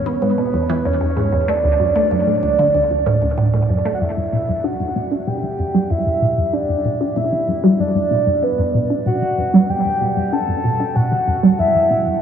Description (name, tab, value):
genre	ambient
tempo	95 BPM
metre	4/4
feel	straight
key	G major from 4.0 s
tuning	A4 = 440 Hz
part	soft octave-layered synth lead	melody	0.0-12.2 s	B4 to A5	-19 LUFS	right 1 dB	chorus, phaser, cassette tape, tape echo
part	resonant blip pluck	riff	0.1-12.1 s	D2 to D4	-18 LUFS	right 1 dB	phaser, wide subtle chorus, tape echo
room	wet huge ambient reverb, RT60 7.0 s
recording	studio reverb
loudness	-15 LUFS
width	side -8 dB against mid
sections	0.0-4.0 A section; 4.0-12.2 B section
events	filter sweep on synth arpeggio sound 4.0-12.2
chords	0.0 E; 1.5 D; 4.0 Gadd9